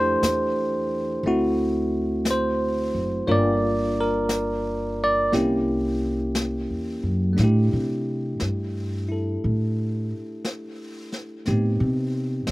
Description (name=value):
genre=jazz ballad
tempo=59 BPM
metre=4/4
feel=swing 67% on 8ths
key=unclear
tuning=A4 = 439 Hz
part: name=bell-like tine electric piano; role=accompaniment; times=0.0-12.5 s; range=A3 to D5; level=-24 LUFS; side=equal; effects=slapback echo
part: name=upright bass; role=bass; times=0.0-12.5 s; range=F#1 to C3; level=-26 LUFS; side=equal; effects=none
part: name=jazz brush drum kit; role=drums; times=0.2-12.5 s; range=brushed snare drum, hi-hat, snare drum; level=-30 LUFS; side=left 1 dB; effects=none
room=little or no reverb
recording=recorded outdoors, with no room sound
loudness=-21 LUFS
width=side -19 dB against mid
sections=0.0-7.4 A section; 7.4-12.5 A section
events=upright bass solo 7.4-12.5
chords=0.0 Fmaj13; 1.2 D7; 3.3 Gm7; 5.3 C7b9; 7.4 C69/G; 11.5 Am7b5